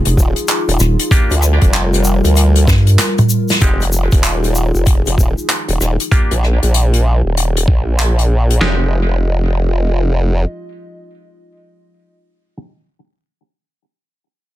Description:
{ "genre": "glitch hop", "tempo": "96 BPM", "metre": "4/4", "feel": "swing 63% on 16ths", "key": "F dorian", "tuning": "A4 = 440 Hz", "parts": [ { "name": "dark analog pad", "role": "sustained chords", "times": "0.0-11.9 s", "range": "G3 to Eb5", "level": "-23 LUFS", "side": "left 2 dB", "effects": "chorus, vintage 12-bit sampler grit, sidechain pumping" }, { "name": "rubbery square bass", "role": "bass", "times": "0.0-3.0 s", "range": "Eb1 to G2", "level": "-11 LUFS", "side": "equal", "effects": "tube saturation" }, { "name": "unplugged drum kit", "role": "drums", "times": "0.1-8.6 s", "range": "handclaps, hi-hat, rim click, snare drum, toms", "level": "-17 LUFS", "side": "equal", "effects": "soft clipping on snare" }, { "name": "egg shaker", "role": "percussion", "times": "0.1-6.1 s", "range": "none", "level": "-25 LUFS", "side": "left 5 dB", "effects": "none" }, { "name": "formant-sweep wobble bass", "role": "bass", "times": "0.2-10.4 s", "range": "Eb1 to D2", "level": "-13 LUFS", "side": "equal", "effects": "chorus, overdrive" }, { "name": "boom bap sampler-style drum kit", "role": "drums", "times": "0.2-8.8 s", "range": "kick drum, snare drum", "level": "-13 LUFS", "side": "equal", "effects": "none" }, { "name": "overdriven clav", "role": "stabs", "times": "1.1-12.6 s", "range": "Ab3 to G4", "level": "-23 LUFS", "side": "equal", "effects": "sidechain pumping, low-pass filter, digital delay" } ], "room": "little or no reverb", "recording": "dense, heavily limited modern master", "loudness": "-12 LUFS", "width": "side -14 dB against mid", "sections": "0.0-3.6 A section; 3.6-8.6 B section; 8.6-11.1 C section", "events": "drop 0.0-3.6; drum fill 2.7-3.6; break 3.0-3.6; band accent 3.5-3.8; filter sweep on clav 3.6-8.6", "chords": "0.0 Fm7; 1.1 Gm7; 3.6 Fm7; 6.1 Ebmaj7; 8.6 Fm7" }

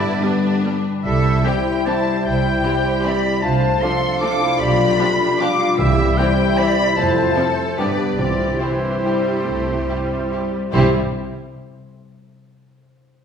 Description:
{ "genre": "classical, orchestral ballroom waltz", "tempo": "135-164 BPM", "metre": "3/4", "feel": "rubato", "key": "C major", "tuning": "A4 = 442 Hz", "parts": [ { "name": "warm symphonic violin section", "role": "melody", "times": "0.0-11.0 s", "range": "C5 to D6", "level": "-26 LUFS", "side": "left 4 dB", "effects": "none" }, { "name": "bright oboe", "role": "second line", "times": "0.0-10.9 s", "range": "C5 to D6", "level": "-26 LUFS", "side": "right 1 dB", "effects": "none" }, { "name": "dark clarinet", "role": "second line", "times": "0.0-10.9 s", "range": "D4 to F4", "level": "-27 LUFS", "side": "left 3 dB", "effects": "none" }, { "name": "mellow hollow flute section", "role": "second line", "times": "0.0-11.0 s", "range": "E4 to F5", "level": "-25 LUFS", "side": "left 1 dB", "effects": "none" }, { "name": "warm symphonic violin section", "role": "second line", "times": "0.0-11.0 s", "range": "D4 to A4", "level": "-29 LUFS", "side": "left 3 dB", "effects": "none" }, { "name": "warm bassoon", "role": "accompaniment", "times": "0.0-10.9 s", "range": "F3 to C4", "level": "-26 LUFS", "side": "right 3 dB", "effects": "none" }, { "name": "dark French horn section", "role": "sustained chords", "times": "0.0-10.9 s", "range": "G3 to E4", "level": "-28 LUFS", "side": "left 2 dB", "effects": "none" }, { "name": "dark trombone section", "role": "sustained chords", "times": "0.0-10.9 s", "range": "G2 to G3", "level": "-30 LUFS", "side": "right 1 dB", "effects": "none" }, { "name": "concert harp", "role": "arpeggios", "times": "0.0-12.0 s", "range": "F2 to C6", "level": "-25 LUFS", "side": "left 4 dB", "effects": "none" }, { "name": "rich symphonic cello section", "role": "bass", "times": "0.0-11.0 s", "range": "C2 to B4", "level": "-29 LUFS", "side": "right 2 dB", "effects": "none" }, { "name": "warm symphonic double bass section", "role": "bass", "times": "0.0-11.0 s", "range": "B1 to G2", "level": "-23 LUFS", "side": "right 3 dB", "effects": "none" }, { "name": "clear symphonic viola section", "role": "accompaniment", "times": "0.2-11.0 s", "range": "E3 to D4", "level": "-28 LUFS", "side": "equal", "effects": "none" }, { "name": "timpani", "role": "percussion", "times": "5.8-10.9 s", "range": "C3", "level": "-27 LUFS", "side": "equal", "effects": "none" } ], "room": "wet recital hall reverb, RT60 1.4 s", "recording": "recorded in a church or concert hall", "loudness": "-16 LUFS", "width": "side -7 dB against mid", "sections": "0.0-10.7 A section; 10.7-12.0 B section", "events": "none", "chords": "0.0 G; 1.0 C; 3.4 Dm7/C; 4.6 G7/B; 5.8 C; 7.0 Fmaj7; 7.8 G; 8.2 C" }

